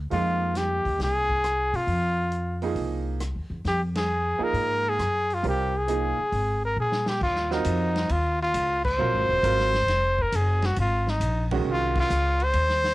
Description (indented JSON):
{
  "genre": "modal jazz",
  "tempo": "135 BPM",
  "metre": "4/4",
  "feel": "swing 68% on 8ths",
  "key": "Eb dorian from 7.2 s",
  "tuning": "A4 = 441 Hz",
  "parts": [
    { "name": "upright bass", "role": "bass", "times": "0.0-12.9 s", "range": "Eb1 to C3", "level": "-27 LUFS", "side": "equal", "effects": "none" },
    { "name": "breathy trumpet", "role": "melody", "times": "0.1-12.9 s", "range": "Eb4 to C5", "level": "-24 LUFS", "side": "equal", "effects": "cassette tape" },
    { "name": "bright upright piano", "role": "accompaniment", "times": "0.1-12.1 s", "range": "Eb3 to Bb4", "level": "-30 LUFS", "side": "right 7 dB", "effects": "cassette tape" },
    { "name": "vintage drum kit", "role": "drums", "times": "0.1-12.9 s", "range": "crash cymbal, hi-hat, kick drum, ride cymbal, rim click, snare drum", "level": "-35 LUFS", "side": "left 1 dB", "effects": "cassette tape" }
  ],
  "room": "light reverb, small room ambience",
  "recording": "home recording on cassette",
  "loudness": "-22 LUFS",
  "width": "side -18 dB against mid",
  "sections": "0.0-7.2 A section; 7.2-12.9 B section",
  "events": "band accent 3.9, 8.8, 11.9; drum fill 6.8-7.2",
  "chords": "0.1 Fm11; 7.2 Eb9sus4",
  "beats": "| 0.10 0.55 0.99 1.43 | 1.88 2.32 2.77 3.21 | 3.66 4.10 4.54 4.99 | 5.43 5.88 6.33 6.77 | 7.21 7.66 8.10 8.55 | 8.99 9.44 9.88 10.32 | 10.77 11.21 11.66 12.10 | 12.55"
}